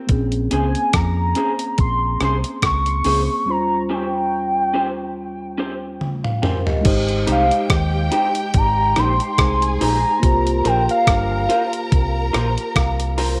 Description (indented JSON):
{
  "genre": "lovers rock reggae",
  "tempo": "71 BPM",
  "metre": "4/4",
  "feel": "swing 56% on 16ths",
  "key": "Ab major",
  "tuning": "A4 = 440 Hz",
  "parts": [
    { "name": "mellow tine electric piano", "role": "accompaniment", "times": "0.0-13.4 s", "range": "Eb2 to Bb5", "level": "-28 LUFS", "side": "equal", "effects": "slapback echo" },
    { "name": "deep dub fingered electric bass", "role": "bass", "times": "0.1-13.4 s", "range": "G1 to F2", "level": "-24 LUFS", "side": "equal", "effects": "none" },
    { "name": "gated 80s digital drum machine", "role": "drums", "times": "0.1-13.4 s", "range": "crash cymbal, hi-hat, kick drum, rim click, toms", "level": "-23 LUFS", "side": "equal", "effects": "gated reverb" },
    { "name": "warm velvety synth lead", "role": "melody", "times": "0.5-12.5 s", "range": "F5 to Db6", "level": "-23 LUFS", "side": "equal", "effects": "chorus, tape echo" },
    { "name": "electric guitar through a small old amp", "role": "stabs", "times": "0.5-13.3 s", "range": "Db4 to C5", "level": "-29 LUFS", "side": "equal", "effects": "slapback echo" },
    { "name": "warm symphonic violin section", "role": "second line", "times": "6.9-13.4 s", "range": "G4 to Bb5", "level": "-31 LUFS", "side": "equal", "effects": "none" }
  ],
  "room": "light reverb, digital ambience",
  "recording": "none",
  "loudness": "-19 LUFS",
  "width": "mono",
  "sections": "0.0-6.9 A section; 6.9-13.4 B section",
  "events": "break 3.5-6.9; drum fill 6.0-6.9; tine electric piano fill 12.3-13.4",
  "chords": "0.1 Bbm9; 3.5 Eb13; 6.9 Abmaj7; 10.2 C7sus4",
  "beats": "| 0.10 0.94 1.78 2.63 | 3.47 4.32 5.16 6.01 | 6.85 7.70 8.54 9.38 | 10.23 11.07 11.91 12.76"
}